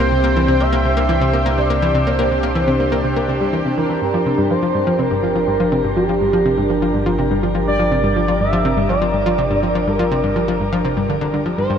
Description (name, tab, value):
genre	ambient, sequencer-driven space music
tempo	123 BPM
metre	4/4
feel	straight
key	G dorian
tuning	A4 = 444 Hz
part	expressive synth lead	melody	0.0-11.8 s	G4 to E5	-20 LUFS	equal	wide subtle chorus, ping-pong delay
part	lush unison pad	sustained chords	0.0-11.8 s	C3 to G5	-21 LUFS	equal	chorus
part	analog pluck	riff	0.0-11.8 s	G2 to Bb3	-19 LUFS	equal	chorus, ping-pong delay
part	round analog bass	bass	0.0-11.8 s	G1 to C2	-24 LUFS	equal	none
room	wet shimmer reverb, RT60 7.9 s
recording	none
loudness	-15 LUFS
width	side -8 dB against mid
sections	0.0-4.0 A section; 4.0-11.8 A section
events	none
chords	0.0 C; 4.0 Gm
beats	| 0.12 0.60 1.09 1.58 | 2.07 2.56 3.04 3.53 | 4.02 4.51 4.99 5.48 | 5.97 6.46 6.95 7.43 | 7.92 8.41 8.90 9.38 | 9.87 10.36 10.85 11.34